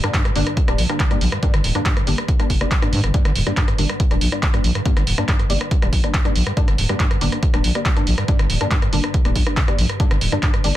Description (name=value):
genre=driving peak-time techno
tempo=140 BPM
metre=4/4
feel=straight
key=G minor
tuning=A4 = 445 Hz
part: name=overdriven acid bass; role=riff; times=0.0-10.7 s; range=F2 to G3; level=-27 LUFS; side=equal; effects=distortion, lush chorus, cassette tape, sidechain pumping, ping-pong delay
part: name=filtered dub chord stab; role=stabs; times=0.0-10.8 s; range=G3 to D4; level=-26 LUFS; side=left 2 dB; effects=ensemble chorus, sidechain pumping, ping-pong delay
part: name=swarming drone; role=drone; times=0.0-10.8 s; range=G2 to D3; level=-32 LUFS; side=right 1 dB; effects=none
part: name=punchy analog drum machine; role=drums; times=0.0-10.7 s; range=handclaps, hi-hat, rim click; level=-24 LUFS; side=right 1 dB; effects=none
part: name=growling FM bass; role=bass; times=0.1-10.7 s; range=D1 to G2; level=-20 LUFS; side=equal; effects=tube saturation, sidechain pumping
part: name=electronic kick drum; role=drums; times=0.1-10.5 s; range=none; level=-18 LUFS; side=equal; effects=none
room=little or no reverb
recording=dense, heavily limited modern master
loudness=-16 LUFS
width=side -14 dB against mid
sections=0.0-10.8 A section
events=none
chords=0.0 Gm